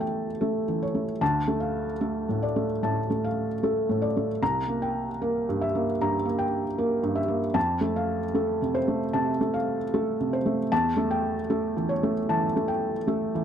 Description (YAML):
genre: neoclassical minimalist piano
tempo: 76 BPM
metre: 4/4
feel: rubato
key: F major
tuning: A4 = 440 Hz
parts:
  - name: felt-muted upright piano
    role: solo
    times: 0.0-13.4 s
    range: C2 to Bb5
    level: -24 LUFS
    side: equal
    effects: none
room: small room ambience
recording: dry, close 1970s-style studio recording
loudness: -24 LUFS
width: side -8 dB against mid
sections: 0.0-13.4 A section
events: none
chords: 0.0 A7/E; 1.2 Dm; 4.4 C7; 7.6 F; 10.7 A7/E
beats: 0.41 | 1.21 2.01 2.82 3.62 | 4.41 5.21 6.00 6.77 | 7.55 8.35 9.13 9.93 | 10.71 11.50 12.29 13.07